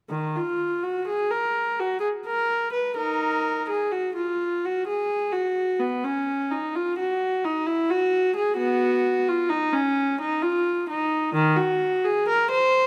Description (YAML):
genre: classical, baroque-style suite movement for unaccompanied viola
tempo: 64 BPM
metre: 3/4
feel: rubato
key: Eb minor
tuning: A4 = 440 Hz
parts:
  - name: warm viola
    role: solo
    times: 0.1-12.9 s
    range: Eb3 to C5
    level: -24 LUFS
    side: equal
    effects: none
room: moderate scoring stage reverb, RT60 1.8 s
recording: close, detailed microphones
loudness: -25 LUFS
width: mono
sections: 0.1-12.9 A section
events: none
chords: none